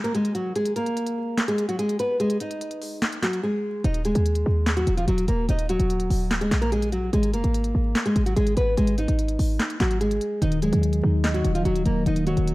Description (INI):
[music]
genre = hip hop, trap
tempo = 146 BPM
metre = 4/4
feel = half-time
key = Eb minor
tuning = A4 = 440 Hz
[part]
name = nylon-string guitar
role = melody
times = 0.0-12.5 s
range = F3 to Eb5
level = -25 LUFS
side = equal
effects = none
[part]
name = trap drum kit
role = drums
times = 0.0-12.5 s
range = handclaps, hi-hat, snare drum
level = -29 LUFS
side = equal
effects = none
[part]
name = downlifter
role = sound effects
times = 0.1-0.6 s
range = none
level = -52 LUFS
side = right 1 dB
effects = none
[part]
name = short 808-style bass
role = bass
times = 3.8-12.5 s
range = D1 to Eb2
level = -23 LUFS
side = equal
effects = none
[part]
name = mellow tine electric piano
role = accompaniment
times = 10.4-12.5 s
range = Eb3 to Eb5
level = -24 LUFS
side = equal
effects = medium stereo tremolo
[sound]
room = digital ambience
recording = dark, warm production, vinyl crackle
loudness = -21 LUFS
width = side -19 dB against mid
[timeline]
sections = 0.0-12.5 A section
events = break 0.0-3.8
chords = 0.0 Ebm (rootless); 0.6 Ab5; 3.8 Ebm; 7.1 Ab5; 10.4 Ebm